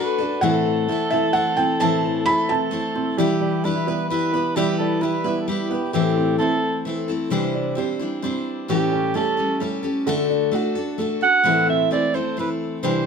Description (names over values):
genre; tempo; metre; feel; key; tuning
acoustic folk duo or small band; 131 BPM; 3/4; straight; A dorian; A4 = 440 Hz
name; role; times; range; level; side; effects
dark soprano saxophone; second line; 0.0-13.1 s; G4 to F#5; -23 LUFS; right 4 dB; none
picked steel-string acoustic guitar; accompaniment; 0.0-13.1 s; A2 to C5; -22 LUFS; left 5 dB; none
clear upright piano; arpeggios; 0.0-13.1 s; E3 to G4; -26 LUFS; right 6 dB; none
felt-muted upright piano; melody; 0.4-2.9 s; E5 to B5; -22 LUFS; right 3 dB; none
room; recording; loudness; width
light reverb; close, detailed microphones; -19 LUFS; side -6 dB against mid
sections
0.0-5.9 A section; 5.9-13.1 B section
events
soprano saxophone solo 5.9-13.1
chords
0.4 Am; 3.2 Em; 5.9 Am; 7.3 Cadd9; 8.7 A7; 10.1 D; 11.4 Am